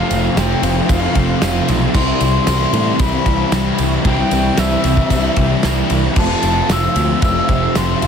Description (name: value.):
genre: rock, shoegaze and dream pop.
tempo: 114 BPM.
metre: 4/4.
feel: straight.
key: F major.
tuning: A4 = 440 Hz.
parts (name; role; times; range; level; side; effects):
mellow silver concert flute; melody; 0.0-8.1 s; E5 to E6; -22 LUFS; left 3 dB; analog delay.
biting overdriven guitar; riff; 0.0-8.1 s; F2 to F4; -22 LUFS; right 11 dB; reverse reverb.
crunchy overdriven guitar; riff; 0.0-8.1 s; F2 to C4; -22 LUFS; left 1 dB; harmonic tremolo.
overdriven electric guitar; riff; 0.0-8.1 s; C3 to F4; -22 LUFS; left 11 dB; lush chorus.
fuzz picked electric bass; bass; 0.1-8.1 s; F1 to A2; -19 LUFS; equal; overdrive.
loose indie drum kit; drums; 0.1-8.1 s; crash cymbal, kick drum, ride cymbal, snare drum; -20 LUFS; equal; none.
tambourine; percussion; 0.1-8.1 s; none; -36 LUFS; right 10 dB; none.
soft additive organ-like pad; sustained chords; 6.6-8.1 s; F4 to A5; -29 LUFS; left 1 dB; none.
room: small room ambience.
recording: dense, heavily limited modern master.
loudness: -13 LUFS.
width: side -7 dB against mid.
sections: 0.0-8.1 A section.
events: none.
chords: 0.0 F; 1.9 C; 6.2 Fmaj7.